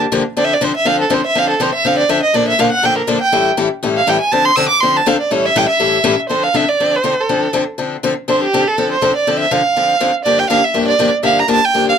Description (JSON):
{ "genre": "jazz", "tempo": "243 BPM", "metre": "4/4", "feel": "swing 54% on 8ths", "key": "D minor", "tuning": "A4 = 440 Hz", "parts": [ { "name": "picked steel-string acoustic guitar", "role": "accompaniment", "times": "0.0-11.9 s", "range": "G2 to A4", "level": "-16 LUFS", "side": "left 4 dB", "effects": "none" }, { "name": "warm violin", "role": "melody", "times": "0.4-12.0 s", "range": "G4 to E6", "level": "-14 LUFS", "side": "right 3 dB", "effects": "none" } ], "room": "light reverb", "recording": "close, detailed microphones", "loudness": "-12 LUFS", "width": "side -7 dB against mid", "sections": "0.0-6.3 A section; 6.3-12.0 B section", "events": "violin solo 0.0-6.3", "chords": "0.4 Dm7; 2.3 Bbmaj7; 3.3 A7; 4.3 Dm7; 5.3 A7; 6.3 Dm7; 10.3 Gm7" }